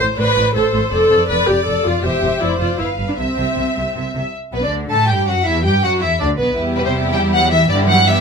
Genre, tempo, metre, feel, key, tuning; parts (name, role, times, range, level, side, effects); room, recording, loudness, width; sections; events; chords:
quick classical-period movement for string orchestra; 161 BPM; 3/4; straight; C major, G major from 4.3 s; A4 = 438 Hz
rich studio violin section; melody; 0.0-8.2 s; B4 to A5; -20 LUFS; left 1 dB
rich studio violin section; second line; 0.0-8.2 s; B3 to E5; -22 LUFS; left 1 dB
rich studio viola section; accompaniment; 0.0-8.2 s; G3 to B4; -19 LUFS; left 1 dB
rich studio cello section; bass; 0.0-8.2 s; E2 to A3; -23 LUFS; right 2 dB
warm studio double bass section; bass; 0.0-8.2 s; E1 to A2; -22 LUFS; right 1 dB
light reverb; close, detailed microphones; -14 LUFS; side -5 dB against mid
0.0-4.3 A section; 4.3-8.2 B section
0.0 Am; 0.9 Dm/F; 2.0 C; 2.4 Dm/F; 2.8 G7; 3.2 C; 4.3 G; 6.6 Em; 7.7 Em/G